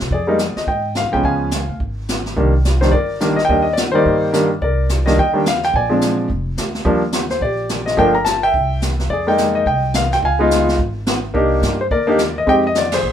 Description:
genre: jazz piano trio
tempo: 214 BPM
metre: 4/4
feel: swing 60% on 8ths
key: C minor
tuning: A4 = 440 Hz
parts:
  - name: upright bass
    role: bass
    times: 0.0-13.1 s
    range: F1 to C3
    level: -22 LUFS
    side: equal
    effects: none
  - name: jazz brush drum kit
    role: drums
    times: 0.0-13.1 s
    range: brushed snare drum, hi-hat, kick drum, ride cymbal, snare drum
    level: -23 LUFS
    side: right 1 dB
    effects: none
  - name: clear concert grand piano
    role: melody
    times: 0.1-13.1 s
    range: Eb3 to Bb5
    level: -16 LUFS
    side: equal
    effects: none
room: moderate studio reverb, RT60 0.7 s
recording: minimal, uncompressed stereo recording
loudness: -14 LUFS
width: side -9 dB against mid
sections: 0.0-4.6 A section; 4.6-13.1 A section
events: band accent 12.9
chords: 0.1 Fm9; 1.2 Db7; 2.4 Cm7; 5.7 Bb7; 6.9 Ebmaj7; 8.0 Gm9; 8.5 C; 9.1 Fm11; 10.2 Db9; 11.3 Cm7; 12.5 Fm7

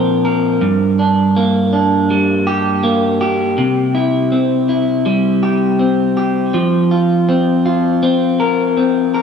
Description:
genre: dream pop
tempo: 81 BPM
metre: 4/4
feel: straight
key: G dorian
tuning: A4 = 436 Hz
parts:
  - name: electric guitar at the edge of break-up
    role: solo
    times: 0.0-9.2 s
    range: G2 to Bb4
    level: -12 LUFS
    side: equal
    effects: lush chorus, ping-pong delay
room: wet plate reverb, RT60 2.3 s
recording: dreamy mix soaked in reverb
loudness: -12 LUFS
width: side -6 dB against mid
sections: 0.0-9.2 A section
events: none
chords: 0.0 Bbadd9; 0.6 Gm; 3.6 C; 6.5 Fsus4

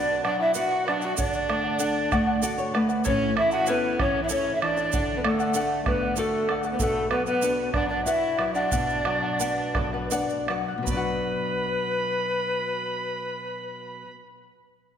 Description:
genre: andean folk, Andean ensemble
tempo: 77-96 BPM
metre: 3/4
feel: straight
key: B minor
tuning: A4 = 440 Hz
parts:
  - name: large pan pipes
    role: melody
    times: 0.0-14.1 s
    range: A4 to F#5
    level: -27 LUFS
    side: equal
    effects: none
  - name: dark violin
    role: second line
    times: 0.0-14.1 s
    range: A3 to B5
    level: -31 LUFS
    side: right 3 dB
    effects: none
  - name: charango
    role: accompaniment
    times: 0.0-14.5 s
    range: E4 to A5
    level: -31 LUFS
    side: left 3 dB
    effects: none
  - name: flamenco guitar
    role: accompaniment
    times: 0.0-14.2 s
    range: A2 to F#5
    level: -30 LUFS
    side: left 2 dB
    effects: none
  - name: bombo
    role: percussion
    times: 0.2-11.2 s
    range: none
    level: -31 LUFS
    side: right 2 dB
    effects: none
  - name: tube shaker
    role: percussion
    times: 0.5-11.2 s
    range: none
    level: -37 LUFS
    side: right 8 dB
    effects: none
room: wet concert hall reverb, RT60 2.1 s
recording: none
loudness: -23 LUFS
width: side -8 dB against mid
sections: 0.0-10.9 A section; 10.9-15.0 B section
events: nylon-string guitar fill 1.8-3.1, 9.4-10.9; slowing down 6.8-10.9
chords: 0.0 Bm; 1.2 D; 3.1 A; 4.9 D; 6.8 Bm

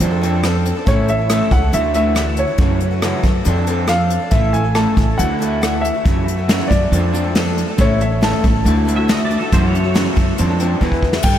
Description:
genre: folk rock and heartland rock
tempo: 139 BPM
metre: 4/4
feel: straight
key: A major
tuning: A4 = 440 Hz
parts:
  - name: picked twelve-string acoustic guitar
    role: accompaniment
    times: 0.0-11.4 s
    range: F#2 to A4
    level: -23 LUFS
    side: left 4 dB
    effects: lush chorus
  - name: electric guitar through a small old amp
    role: riff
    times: 0.0-11.4 s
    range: E2 to E4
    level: -22 LUFS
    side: right 1 dB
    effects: lush chorus
  - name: upright bass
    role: bass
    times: 0.0-11.4 s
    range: A1 to G2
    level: -18 LUFS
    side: equal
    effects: none
  - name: soft brush drum kit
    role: drums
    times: 0.0-11.3 s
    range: crash cymbal, hi-hat, kick drum, rim click, snare drum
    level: -19 LUFS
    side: equal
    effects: none
  - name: warm grand piano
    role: melody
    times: 0.9-11.4 s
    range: C#5 to A5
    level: -22 LUFS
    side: equal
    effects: analog delay
  - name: pedal steel guitar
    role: second line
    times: 9.0-10.1 s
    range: A4 to E5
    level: -26 LUFS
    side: right 3 dB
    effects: ensemble chorus
room: moderate huge ambient reverb, RT60 5.1 s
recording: dreamy mix soaked in reverb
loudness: -14 LUFS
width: side -10 dB against mid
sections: 0.0-11.2 A section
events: drum fill 10.8-11.2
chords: 0.0 F6; 0.9 A; 1.7 Dadd9; 2.6 F#m7; 3.5 F6; 4.3 A; 5.2 Dadd9; 6.1 F#m7; 6.9 F6; 7.8 A; 8.7 Dadd9; 9.5 F#m7; 10.4 F6; 10.8 Eadd9

